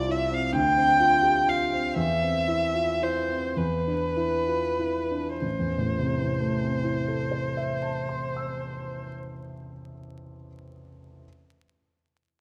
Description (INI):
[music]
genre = classical, romantic duo for violin and grand piano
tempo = 31-45 BPM (dotted quarters)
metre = 6/8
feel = rubato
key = A minor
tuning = A4 = 440 Hz
[part]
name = dark violin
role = melody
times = 0.0-9.1 s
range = B4 to G5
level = -28 LUFS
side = equal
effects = none
[part]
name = warm grand piano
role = accompaniment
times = 0.0-11.3 s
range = A1 to E6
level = -31 LUFS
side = equal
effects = none
[sound]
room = moderate scoring stage reverb, RT60 2.1 s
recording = vinyl crackle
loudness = -26 LUFS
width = mono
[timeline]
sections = 0.0-5.4 A section; 5.4-9.0 B section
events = slowing down 0.0-5.4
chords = 0.0 Cadd9; 0.5 Dm7; 2.0 Cadd11/E; 3.6 E5; 5.4 Am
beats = 0.55 | 1.97 3.58 | 5.42 7.21